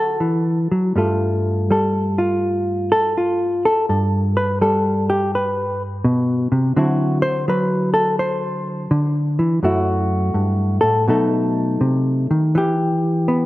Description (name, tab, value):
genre	solo jazz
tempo	83 BPM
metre	4/4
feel	swing 66% on 8ths, rubato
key	unclear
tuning	A4 = 441 Hz
part	hollow-body jazz guitar	solo	0.0-13.5 s	F#2 to C5	-16 LUFS	equal	none
room	moderate plate reverb, RT60 2.5 s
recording	rough home demo mix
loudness	-16 LUFS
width	side -17 dB against mid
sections	0.0-13.5 A section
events	hollow-body jazz guitar solo 0.0-13.5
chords	0.0 Dadd9; 1.0 G9; 6.8 D9; 9.6 F#m7; 11.1 B7; 12.6 Em